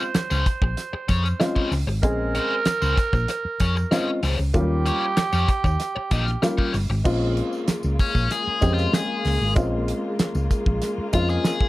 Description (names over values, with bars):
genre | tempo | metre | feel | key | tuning
funk | 96 BPM | 4/4 | straight | Bb dorian | A4 = 438 Hz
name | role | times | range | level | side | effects
raspy tenor saxophone | second line | 0.0-6.7 s | G4 to C5 | -27 LUFS | right 4 dB | none
dark upright piano | stabs | 0.0-11.5 s | Gb3 to Ab4 | -25 LUFS | left 1 dB | none
tambourine | percussion | 0.0-11.6 s | none | -43 LUFS | left 4 dB | none
biting overdriven guitar | accompaniment | 0.1-11.7 s | Db4 to Eb5 | -27 LUFS | left 4 dB | wah
damped 70s drum kit | drums | 0.1-11.7 s | crash cymbal, hi-hat, kick drum, snare drum | -24 LUFS | equal | none
hollow-body short-scale fingered electric bass | bass | 0.2-11.4 s | G1 to F2 | -23 LUFS | equal | none
warm studio string section | sustained chords | 7.0-11.7 s | Db3 to F4 | -29 LUFS | left 1 dB | none
room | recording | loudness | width
light reverb | none | -20 LUFS | side -17 dB against mid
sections
0.0-7.1 A section; 7.1-11.7 B section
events
overdriven electric guitar solo 7.1-11.7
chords
0.0 Bbm9; 4.5 Eb9; 7.1 Bbm9